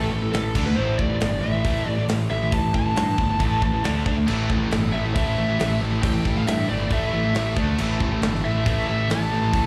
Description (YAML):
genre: heavy metal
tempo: 137 BPM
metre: 4/4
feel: straight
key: unclear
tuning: A4 = 440 Hz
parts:
  - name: high-gain lead guitar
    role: melody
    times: 0.0-9.7 s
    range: A4 to A5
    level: -30 LUFS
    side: equal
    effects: distortion, slapback echo
  - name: heavy high-gain guitar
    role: riff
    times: 0.0-9.7 s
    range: A2 to D4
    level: -33 LUFS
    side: equal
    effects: none
  - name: heavy high-gain guitar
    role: riff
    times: 0.0-9.7 s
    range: A2 to D4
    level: -31 LUFS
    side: equal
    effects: distortion, slapback echo
  - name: fuzz picked electric bass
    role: bass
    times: 0.0-9.7 s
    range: G1 to G2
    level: -26 LUFS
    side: equal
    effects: overdrive
  - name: tight metal drum kit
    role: drums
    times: 0.3-9.6 s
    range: crash cymbal, hi-hat, kick drum, snare drum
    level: -29 LUFS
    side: equal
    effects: none
  - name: heavy high-gain guitar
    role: riff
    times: 4.3-9.7 s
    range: A2 to A3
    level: -32 LUFS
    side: equal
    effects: distortion, slapback echo
room: studio reverb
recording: live gig heard through the venue's PA, club reverb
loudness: -22 LUFS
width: mono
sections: 0.0-9.7 A section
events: none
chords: 0.0 A5; 0.6 D5; 0.8 A5; 3.8 D5; 4.3 A5; 7.6 D5; 7.8 A5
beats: 0.34 | 0.77 1.21 1.65 2.09 | 2.52 2.96 3.40 3.84 | 4.28 4.72 5.16 5.59 | 6.03 6.47 6.91 7.35 | 7.79 8.23 8.67 9.10 | 9.54